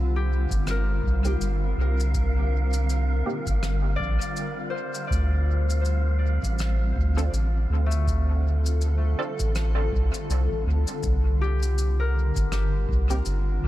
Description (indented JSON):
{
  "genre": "ambient dub",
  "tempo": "81 BPM",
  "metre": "4/4",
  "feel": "swing 57% on 16ths",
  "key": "unclear",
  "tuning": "A4 = 440 Hz",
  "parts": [
    { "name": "granular cloud pad", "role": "sustained chords", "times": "0.0-13.7 s", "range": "D3 to Bb4", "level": "-33 LUFS", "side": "left 1 dB", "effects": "built-in reverb" },
    { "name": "round analog bass", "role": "bass", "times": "0.0-13.7 s", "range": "G1 to D2", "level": "-23 LUFS", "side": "equal", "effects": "tube saturation" },
    { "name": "wind-like tuned noise texture", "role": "texture", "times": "0.0-11.1 s", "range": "F5", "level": "-39 LUFS", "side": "right 3 dB", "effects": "built-in reverb" },
    { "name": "concert harp", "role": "arpeggios", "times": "0.2-13.7 s", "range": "A3 to D5", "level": "-35 LUFS", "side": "left 5 dB", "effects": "tape echo" },
    { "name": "electronic kick drum", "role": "drums", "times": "0.5-13.1 s", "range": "none", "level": "-31 LUFS", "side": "equal", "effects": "none" },
    { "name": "shaker and rim click", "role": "drums", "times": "0.5-13.4 s", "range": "none", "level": "-37 LUFS", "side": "left 2 dB", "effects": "dub echo" },
    { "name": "filtered dub chord stab", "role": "stabs", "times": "1.2-13.2 s", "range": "Bb3 to A4", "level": "-36 LUFS", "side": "right 2 dB", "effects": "phaser, ensemble chorus, dub echo" }
  ],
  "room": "small room ambience",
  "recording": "none",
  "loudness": "-22 LUFS",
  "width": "side -15 dB against mid",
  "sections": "0.0-11.0 A section; 11.0-13.7 B section",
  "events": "none",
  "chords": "0.0 C7(no3); 5.1 Dm7; 11.0 C7(no3)"
}